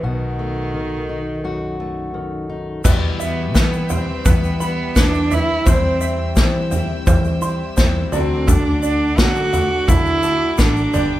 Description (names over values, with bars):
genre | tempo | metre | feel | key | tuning
indie folk with a building arrangement | 85 BPM | 4/4 | straight | E minor | A4 = 441 Hz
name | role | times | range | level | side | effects
warm cello | melody | 0.0-11.2 s | D#3 to F#4 | -21 LUFS | right 2 dB | none
fingerpicked steel-string acoustic guitar | accompaniment | 0.0-2.8 s | F#2 to F#4 | -25 LUFS | left 2 dB | none
fingered electric bass | bass | 0.0-11.2 s | G1 to E3 | -24 LUFS | equal | none
picked twelve-string acoustic guitar | accompaniment | 2.8-11.2 s | E2 to G4 | -28 LUFS | left 5 dB | none
warm upright piano | accompaniment | 2.8-11.2 s | G1 to C5 | -30 LUFS | left 3 dB | none
warm chamber string section | sustained chords | 2.8-11.2 s | A4 to E6 | -32 LUFS | left 2 dB | none
open-back banjo | arpeggios | 2.8-11.2 s | A4 to C6 | -27 LUFS | right 2 dB | none
unplugged drum kit | drums | 2.8-11.1 s | crash cymbal, kick drum, snare drum, toms | -18 LUFS | equal | none
tube shaker | percussion | 2.8-11.1 s | none | -33 LUFS | left 6 dB | none
room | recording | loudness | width
light reverb | none | -16 LUFS | side -14 dB against mid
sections
0.0-2.8 A section; 2.8-11.2 B section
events
none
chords
0.0 B7; 2.8 Em; 5.7 C/E; 8.1 D